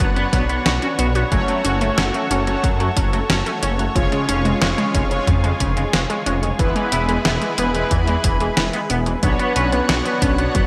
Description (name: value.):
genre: synthwave.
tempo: 91 BPM.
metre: 4/4.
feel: straight.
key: F# minor.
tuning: A4 = 440 Hz.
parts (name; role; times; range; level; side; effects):
lush unison pad; sustained chords; 0.0-10.7 s; D4 to F#5; -28 LUFS; equal; chorus, vintage 12-bit sampler grit, sidechain pumping, shimmer reverb.
unison pluck; arpeggios; 0.0-10.7 s; E3 to F#4; -27 LUFS; equal; delay, shimmer reverb.
clean electric guitar; riff; 0.0-10.6 s; C#3 to B4; -30 LUFS; equal; analog chorus, delay, shimmer reverb.
detuned saw bass; bass; 0.0-10.7 s; E1 to F#2; -25 LUFS; equal; chorus, tube saturation.
clean 12-bit digital drum machine; drums; 0.0-10.7 s; hi-hat, snare drum; -26 LUFS; equal; small room ambience, gated reverb.
electronic kick drum; drums; 0.0-10.7 s; none; -23 LUFS; equal; small room ambience.
mellow synth brass; stabs; 1.3-10.5 s; G#3 to C#5; -28 LUFS; equal; chorus, delay, shimmer reverb.
room: moderate plate reverb, RT60 2.4 s.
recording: bright 1980s-style digital production.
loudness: -19 LUFS.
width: mono.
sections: 0.0-10.7 A section.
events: none.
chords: 0.0 Bmadd9; 1.3 F#m; 4.0 C#/E#; 6.6 E; 9.2 Bmadd9.